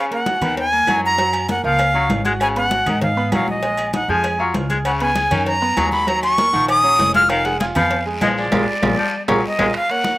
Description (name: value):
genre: latin, salsa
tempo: 196 BPM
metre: 4/4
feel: straight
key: unclear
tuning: A4 = 440 Hz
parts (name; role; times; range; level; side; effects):
- bright reedy jazz flute; melody; 0.0-10.2 s; D5 to F6; -18 LUFS; equal; none
- breathy baritone saxophone; second line; 0.0-9.7 s; Db3 to Ab3; -23 LUFS; left 3 dB; slapback echo
- bright concert grand piano; accompaniment; 0.1-10.2 s; Eb3 to Ab6; -25 LUFS; right 3 dB; slapback echo
- congas; percussion; 0.1-10.2 s; none; -25 LUFS; left 3 dB; none
- cowbell; percussion; 0.1-9.7 s; none; -31 LUFS; left 3 dB; none
- timbales and agogo bells; percussion; 0.3-10.2 s; none; -27 LUFS; right 2 dB; slapback echo
- upright bass; bass; 0.4-9.7 s; F1 to Ab2; -26 LUFS; equal; none
- claves; percussion; 0.4-9.9 s; none; -34 LUFS; right 2 dB; none
- guiro; percussion; 4.9-10.2 s; none; -34 LUFS; left 2 dB; none
room: little or no reverb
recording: recorded outdoors, with no room sound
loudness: -15 LUFS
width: side -17 dB against mid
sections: 0.0-9.7 A section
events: band accent 8.5-9.7; drum fill 9.1-9.7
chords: 0.0 Bmaj7; 1.2 Gbmaj7; 2.4 Abm7; 3.6 Bb7sus4; 4.9 Db9sus4; 6.1 Ebm9; 7.3 Fm7b5; 8.5 Bb7